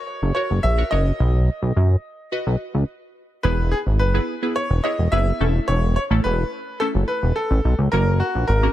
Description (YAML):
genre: dance-pop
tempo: 107 BPM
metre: 4/4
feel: straight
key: E major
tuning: A4 = 441 Hz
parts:
  - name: bright grand piano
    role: melody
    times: 0.0-8.7 s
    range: F#4 to E5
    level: -25 LUFS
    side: equal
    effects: digital delay
  - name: wavetable chord stab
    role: accompaniment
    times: 0.0-8.7 s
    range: A3 to D#5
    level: -27 LUFS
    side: right 1 dB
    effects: none
  - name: chorused synth bass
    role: bass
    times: 0.2-8.7 s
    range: E1 to F#2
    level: -18 LUFS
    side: equal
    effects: none
room: small room ambience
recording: lossy compression artefacts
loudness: -18 LUFS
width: side -13 dB against mid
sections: 0.0-3.4 A section; 3.4-8.7 B section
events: stop 2.9-3.4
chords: 0.0 F#; 1.2 B; 3.4 E; 5.4 A/E; 7.9 F#